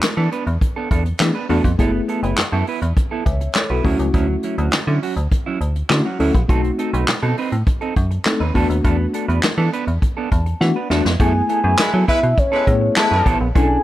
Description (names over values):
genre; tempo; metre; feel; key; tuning
early-eighties boogie funk; 102 BPM; 4/4; straight; F# minor; A4 = 439 Hz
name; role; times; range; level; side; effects
mellow tine electric piano; accompaniment; 0.0-13.8 s; G#3 to A5; -22 LUFS; left 3 dB; medium stereo tremolo
clean electric guitar; riff; 0.0-13.8 s; F#3 to B4; -24 LUFS; right 6 dB; wide subtle chorus
metallic FM bass; bass; 0.0-13.8 s; F#1 to F#3; -19 LUFS; equal; none
vintage brush drum kit; drums; 0.0-13.7 s; handclaps, hi-hat, kick drum, snare drum; -20 LUFS; equal; none
soft octave-layered synth lead; melody; 11.2-13.8 s; C#5 to A5; -19 LUFS; left 1 dB; chorus, tremolo
warm horn section; second line; 11.8-13.4 s; G#3 to B4; -24 LUFS; equal; none
room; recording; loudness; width
studio ambience; none; -16 LUFS; side -14 dB against mid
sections
0.0-11.2 A section; 11.2-13.8 B section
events
tine electric piano fill 10.0-11.2; drum fill 10.6-11.2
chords
0.0 E7sus4; 1.8 F#m11; 3.8 Dmaj9; 6.5 B7b9; 8.6 E7sus4; 11.2 F#m11